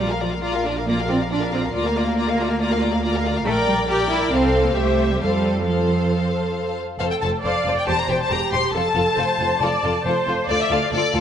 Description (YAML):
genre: quick classical-period movement for string orchestra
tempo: 138 BPM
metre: 4/4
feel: straight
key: Bb major, F major from 3.5 s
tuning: A4 = 440 Hz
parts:
  - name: rich studio violin section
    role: melody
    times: 0.0-11.2 s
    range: D5 to C6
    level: -25 LUFS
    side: left 6 dB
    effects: none
  - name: rich chamber violin section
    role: second line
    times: 0.0-11.2 s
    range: F4 to F5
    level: -26 LUFS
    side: left 3 dB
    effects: none
  - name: rich studio viola section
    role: accompaniment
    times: 0.0-11.2 s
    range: F4 to D5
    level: -24 LUFS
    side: right 1 dB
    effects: none
  - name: rich chamber cello section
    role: bass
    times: 0.0-11.2 s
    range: D2 to G4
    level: -24 LUFS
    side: right 2 dB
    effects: none
  - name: rich chamber double bass section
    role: bass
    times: 0.0-11.2 s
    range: E1 to F2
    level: -26 LUFS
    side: right 2 dB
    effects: none
room: moderate concert hall reverb, RT60 2.2 s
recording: nothing above 10.7 kHz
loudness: -18 LUFS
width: side -8 dB against mid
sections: 0.0-7.0 A section; 7.0-11.2 B section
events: none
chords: 0.0 Bb; 1.7 Bb/D; 3.5 Gm/Bb; 4.3 F/C; 4.8 C; 5.2 F; 7.9 C/E; 8.7 F; 10.5 Dm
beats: 0.43 0.87 1.30 | 1.73 2.16 2.59 3.02 | 3.45 3.88 4.32 4.76 | 5.21 5.66 6.11 6.55 | 7.00 7.44 7.87 8.31 | 8.74 9.18 9.61 10.05 | 10.48 10.92